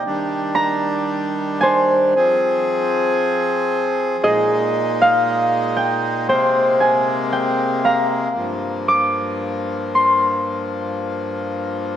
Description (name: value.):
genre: celtic folk, Celtic slow air.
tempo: 58 BPM.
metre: 4/4.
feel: rubato.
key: unclear.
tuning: A4 = 442 Hz.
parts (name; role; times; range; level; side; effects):
Celtic harp; accompaniment; 0.0-11.3 s; Ab4 to D6; -18 LUFS; equal; none.
accordion; sustained chords; 0.0-12.0 s; G2 to Ab4; -20 LUFS; left 1 dB; none.
room: wet plate reverb, RT60 3.1 s.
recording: dreamy mix soaked in reverb.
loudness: -16 LUFS.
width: side -10 dB against mid.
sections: 0.0-12.0 A section.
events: harp solo 0.0-12.0.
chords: 0.1 Ebmaj7; 2.2 Fm; 4.2 Bb7sus4; 6.3 Abadd9; 8.4 Gm7.